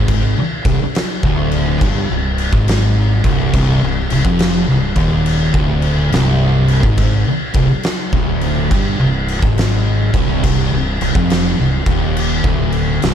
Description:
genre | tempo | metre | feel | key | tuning
stoner and doom metal | 70 BPM | 4/4 | swing 66% on 8ths | C minor | A4 = 441 Hz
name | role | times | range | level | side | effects
thick fuzz guitar | riff | 0.0-13.1 s | C2 to Ab2 | -15 LUFS | equal | distortion
fuzz fingered electric bass | bass | 0.0-13.1 s | C1 to Ab1 | -20 LUFS | equal | overdrive
oversized low-tuned drum kit | drums | 0.1-13.1 s | crash cymbal, kick drum, snare drum | -18 LUFS | equal | none
room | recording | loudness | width
light reverb, small room ambience | dark, warm production | -13 LUFS | side -9 dB against mid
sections
0.0-13.1 A section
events
none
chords
0.0 Cm

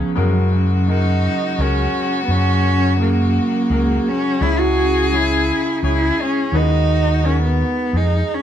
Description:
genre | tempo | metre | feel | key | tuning
acoustic folk-pop ballad | 85 BPM | 3/4 | straight | unclear | A4 = 440 Hz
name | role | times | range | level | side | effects
dark violin | second line | 0.0-8.3 s | C#4 to G#4 | -25 LUFS | left 2 dB | none
bright upright piano | accompaniment | 0.0-8.4 s | F#1 to C#5 | -26 LUFS | left 3 dB | none
vibraphone with soft mallets | arpeggios | 0.0-8.4 s | E#3 to G#4 | -23 LUFS | right 2 dB | none
fingered electric bass | bass | 0.2-8.2 s | C#2 to F#2 | -18 LUFS | equal | none
warm cello | melody | 0.9-8.4 s | A#3 to F#4 | -20 LUFS | equal | none
room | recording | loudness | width
moderate studio reverb, RT60 0.7 s | band playing live in one room | -15 LUFS | side -10 dB against mid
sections
0.2-8.4 A section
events
none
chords
0.2 F#add9; 4.4 C#m; 6.5 B6/D#

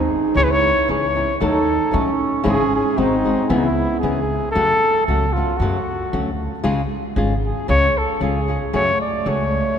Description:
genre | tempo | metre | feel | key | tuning
mexican folk, mariachi | 115 BPM | 2/4 | straight | C# minor, F# harmonic minor from 4.6 s | A4 = 440 Hz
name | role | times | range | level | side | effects
mellow bass clarinet | second line | 0.0-4.3, 8.8-9.8 s | A3 to E4 | -22 LUFS | right 3 dB | none
upright bass | bass | 0.0-9.6 s | G#1 to A2 | -23 LUFS | equal | none
dark trumpet | melody | 0.4-9.8 s | D#4 to D5 | -20 LUFS | left 1 dB | none
flamenco guitar | accompaniment | 0.4-9.4 s | F#2 to A4 | -23 LUFS | left 3 dB | none
room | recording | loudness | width
wet cathedral reverb, RT60 5.0 s | recorded in a church or concert hall | -16 LUFS | side -8 dB against mid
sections
0.0-4.6 A section; 4.6-9.8 B section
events
none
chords
0.4 C#madd9; 1.4 D#dim; 2.5 C#m/G#; 3.0 G#7; 3.5 C#m7; 4.6 F#m; 6.6 C#; 8.7 F#madd9

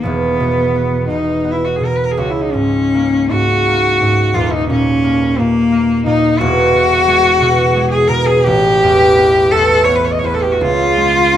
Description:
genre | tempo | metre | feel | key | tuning
classical, impressionist duo for cello and harp | 50-60 BPM (dotted quarters) | 6/8 | rubato | unclear | A4 = 441 Hz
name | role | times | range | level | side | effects
clear cello | melody | 0.0-11.4 s | A#3 to D#5 | -13 LUFS | left 1 dB | none
concert harp | accompaniment | 0.0-11.4 s | D#1 to D#4 | -15 LUFS | right 2 dB | none
room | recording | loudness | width
light reverb | close, detailed microphones | -11 LUFS | side -10 dB against mid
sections
0.0-11.4 A section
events
none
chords
0.0 E5; 2.2 C#5; 4.4 D#5; 6.4 Eadd9; 8.5 Asus2; 10.6 C#7

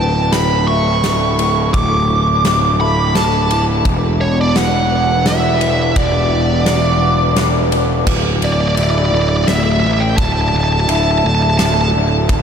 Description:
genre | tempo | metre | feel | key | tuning
post-rock | 85 BPM | 3/4 | straight | unclear | A4 = 440 Hz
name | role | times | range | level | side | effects
bluesy overdriven lead guitar | melody | 0.0-11.9 s | C#5 to D6 | -17 LUFS | right 1 dB | distortion, ping-pong delay
electric guitar through a small old amp | arpeggios | 0.0-12.4 s | D2 to E4 | -20 LUFS | left 2 dB | lush chorus, ping-pong delay
fuzz picked electric bass | bass | 0.0-12.4 s | D1 to A1 | -16 LUFS | equal | overdrive
big rock drum kit | drums | 0.3-12.4 s | crash cymbal, kick drum, ride cymbal, snare drum | -20 LUFS | equal | none
room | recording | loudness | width
moderate huge ambient reverb, RT60 7.5 s | dreamy mix soaked in reverb | -12 LUFS | side -7 dB against mid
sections
0.0-8.1 A section; 8.1-12.4 B section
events
none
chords
0.0 D5; 3.8 Em7; 8.1 Dsus2

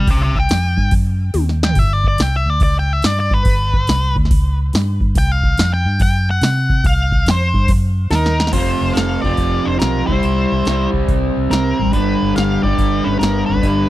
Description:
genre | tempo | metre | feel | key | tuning
blues rock power trio and southern rock | 142 BPM | 4/4 | swing 66% on 8ths | unclear | A4 = 444 Hz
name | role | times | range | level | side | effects
octave-fuzz lead guitar | melody | 0.0-13.9 s | Bb4 to G5 | -21 LUFS | left 1 dB | distortion, tape echo
vintage muted fingered electric bass | bass | 0.0-13.8 s | F1 to C3 | -18 LUFS | equal | none
electro analog drum machine | drums | 0.1-13.8 s | crash cymbal, hi-hat, kick drum, snare drum, toms | -18 LUFS | equal | none
dark smooth lead guitar | second line | 8.1-13.9 s | B3 to A4 | -26 LUFS | right 3 dB | overdrive, tape echo
raw garage guitar | riff | 8.5-13.9 s | F2 to C4 | -18 LUFS | equal | overdrive
room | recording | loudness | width
little or no reverb | dry, close 1970s-style studio recording | -14 LUFS | side -15 dB against mid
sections
0.0-8.5 A section; 8.5-13.9 B section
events
lead electric guitar solo 0.0-8.5; drum fill 1.3-1.8, 8.1-8.5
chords
0.0 C5; 0.9 N.C.; 1.3 Eb; 1.8 G5; 2.6 C#dim; 3.0 G; 4.3 N.C.; 5.2 C5; 6.0 N.C.; 6.4 C5; 7.7 N.C.; 8.1 Eb5; 8.5 F5; 10.0 C; 11.9 G

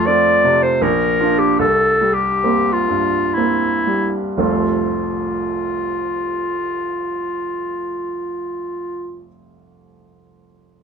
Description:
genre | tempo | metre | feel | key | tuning
classical, romantic duo for clarinet and grand piano | 56-84 BPM | 3/4 | rubato | F major | A4 = 440 Hz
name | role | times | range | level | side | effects
bright clarinet | melody | 0.0-9.3 s | E4 to D5 | -18 LUFS | left 2 dB | none
bright baby grand piano | accompaniment | 0.0-10.8 s | F1 to F4 | -20 LUFS | right 4 dB | none
room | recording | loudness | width
light reverb | none | -16 LUFS | side -6 dB against mid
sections
0.0-4.4 A section; 4.4-10.3 B section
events
slowing down 0.0-4.4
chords
0.0 F; 0.8 Bb; 1.6 C7; 4.4 F

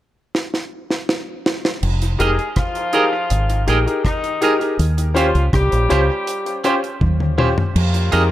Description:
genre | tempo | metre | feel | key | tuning
lovers rock reggae | 81 BPM | 4/4 | straight | F minor | A4 = 441 Hz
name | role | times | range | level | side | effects
deep reggae drum kit | drums | 0.3-8.3 s | crash cymbal, hi-hat, kick drum, rim click, snare drum, toms | -22 LUFS | equal | dub echo
deep dub fingered electric bass | bass | 1.8-8.3 s | F1 to F2 | -17 LUFS | equal | none
clear horn section | second line | 2.2-8.3 s | C3 to Ab4 | -23 LUFS | left 2 dB | none
clear concert grand piano | accompaniment | 2.2-8.3 s | Db4 to C5 | -22 LUFS | left 3 dB | dub echo
twangy electric guitar | stabs | 2.2-8.2 s | Db4 to Eb5 | -22 LUFS | right 5 dB | spring reverb
room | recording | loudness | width
light reverb, small room ambience | none | -16 LUFS | side -14 dB against mid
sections
0.0-1.8 A section; 1.8-7.8 B section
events
drum fill 0.3-1.8, 7.0-7.8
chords
0.0 N.C.; 1.8 Fm11; 4.8 Eb13; 7.8 Fm11

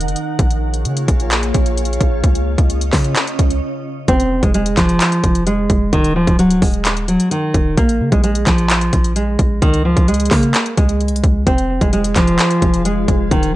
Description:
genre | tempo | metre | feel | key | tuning
hip hop, trap | 130 BPM | 4/4 | half-time | F phrygian | A4 = 435 Hz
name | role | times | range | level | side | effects
glassy FM pad | sustained chords | 0.0-4.1, 12.0-13.6 s | Db3 to Gb5 | -24 LUFS | equal | ensemble chorus, built-in reverb
warm 808-style bass | bass | 0.0-13.6 s | Db1 to Db3 | -19 LUFS | equal | none
trap drum kit | drums | 0.0-13.5 s | handclaps, hi-hat, kick drum | -16 LUFS | equal | vintage 12-bit sampler grit
nylon-string guitar | melody | 4.1-13.5 s | Eb3 to C4 | -16 LUFS | right 1 dB | low-pass filter
room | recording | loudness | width
little or no reverb | dry, gritty hardware recording | -13 LUFS | side -16 dB against mid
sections
0.0-4.1 A section; 4.1-13.6 B section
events
break 3.6-4.1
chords
0.4 Bbm7; 2.2 Dbadd9; 4.1 Fm; 5.9 Dbsus2; 7.8 Bb7(no3); 9.6 Db5; 11.5 Fm

